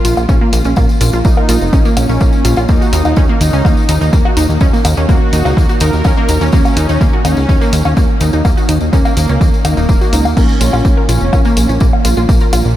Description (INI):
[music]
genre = melodic techno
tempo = 125 BPM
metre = 4/4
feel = straight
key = unclear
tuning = A4 = 438 Hz
[part]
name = soft supersaw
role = melody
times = 0.0-11.7 s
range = Bb3 to Bb4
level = -21 LUFS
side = equal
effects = sidechain pumping, diffuse ambient delay
[part]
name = wide unison pluck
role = arpeggios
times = 0.0-12.6 s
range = Bb3 to Bb4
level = -18 LUFS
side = right 1 dB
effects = sidechain pumping, analog delay
[part]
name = plucky analog bass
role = bass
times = 0.0-12.7 s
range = Eb1 to Eb2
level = -14 LUFS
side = equal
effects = sidechain pumping
[part]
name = bowed-like drone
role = drone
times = 0.0-12.8 s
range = Bb2 to Bb3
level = -25 LUFS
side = equal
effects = none
[part]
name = punchy analog drum machine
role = drums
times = 0.0-12.6 s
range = crash cymbal, hi-hat, woodblock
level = -22 LUFS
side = left 2 dB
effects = sidechain pumping on cymbals, sidechain pumping on hats, sidechain pumping on perc
[part]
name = tambourine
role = percussion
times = 0.1-12.7 s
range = none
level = -26 LUFS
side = left 3 dB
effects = none
[part]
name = electronic kick drum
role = drums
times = 0.3-12.4 s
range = none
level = -12 LUFS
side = equal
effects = none
[sound]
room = light reverb, digital ambience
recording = none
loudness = -9 LUFS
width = side -13 dB against mid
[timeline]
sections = 0.0-12.8 A section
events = none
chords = 0.0 Bbm; 2.7 Eb7(no3); 10.4 Bbm